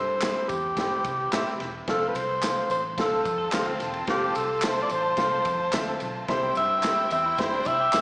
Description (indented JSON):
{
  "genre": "uptempo 1960s-style soul",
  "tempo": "109 BPM",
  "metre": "4/4",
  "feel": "straight",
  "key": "F major",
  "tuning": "A4 = 440 Hz",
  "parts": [
    { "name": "breathy alto saxophone", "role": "melody", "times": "0.0-8.0 s", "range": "G4 to E5", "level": "-25 LUFS", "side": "equal", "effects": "slapback echo" },
    { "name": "warm grand piano", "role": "accompaniment", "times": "0.0-8.0 s", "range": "C3 to G5", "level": "-32 LUFS", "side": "equal", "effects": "slapback echo" },
    { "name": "vintage muted fingered electric bass", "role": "bass", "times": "0.0-8.0 s", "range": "E1 to C3", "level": "-38 LUFS", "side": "equal", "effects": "none" },
    { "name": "warm soul drum kit", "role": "drums", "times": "0.2-8.0 s", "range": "kick drum, ride cymbal, snare drum", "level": "-32 LUFS", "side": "equal", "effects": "none" },
    { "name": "handclaps and tambourine", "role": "percussion", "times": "0.2-8.0 s", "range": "none", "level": "-34 LUFS", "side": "equal", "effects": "none" },
    { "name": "bright studio violin section", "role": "second line", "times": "3.0-8.0 s", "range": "E4 to A5", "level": "-33 LUFS", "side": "equal", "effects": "slapback echo" },
    { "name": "electric guitar through a small old amp", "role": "riff", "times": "3.4-8.0 s", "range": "C4 to A4", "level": "-34 LUFS", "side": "left 1 dB", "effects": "slapback echo" }
  ],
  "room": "moderate plate reverb, RT60 2.0 s",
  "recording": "live gig heard through the venue's PA, recital hall reverb, small speaker sound",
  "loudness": "-23 LUFS",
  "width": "side -27 dB against mid",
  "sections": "0.0-8.0 A section",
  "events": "none",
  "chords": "0.0 C; 1.9 F; 6.3 C"
}